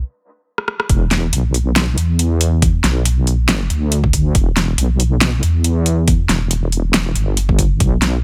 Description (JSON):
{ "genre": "deep dubstep", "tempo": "139 BPM", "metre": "4/4", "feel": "swing 55% on 16ths, half-time", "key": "E minor", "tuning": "A4 = 440 Hz", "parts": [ { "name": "deep soft wobble bass", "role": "bass", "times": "0.0-8.2 s", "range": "E1 to E2", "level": "-18 LUFS", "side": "equal", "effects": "chorus" }, { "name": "deep house drum kit", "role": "drums", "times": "0.6-8.1 s", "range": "hi-hat, rim click, snare drum", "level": "-20 LUFS", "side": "equal", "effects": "low-pass filter on snare, small room ambience, low-pass filter on hats" }, { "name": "electronic kick drum", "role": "drums", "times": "0.9-7.9 s", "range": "none", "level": "-18 LUFS", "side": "equal", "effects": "small room ambience" } ], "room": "little or no reverb", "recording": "none", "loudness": "-16 LUFS", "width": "mono", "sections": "0.9-8.2 A section", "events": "break 0.0-0.9; drum fill 0.6-0.9; drop 0.9-8.2", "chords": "none" }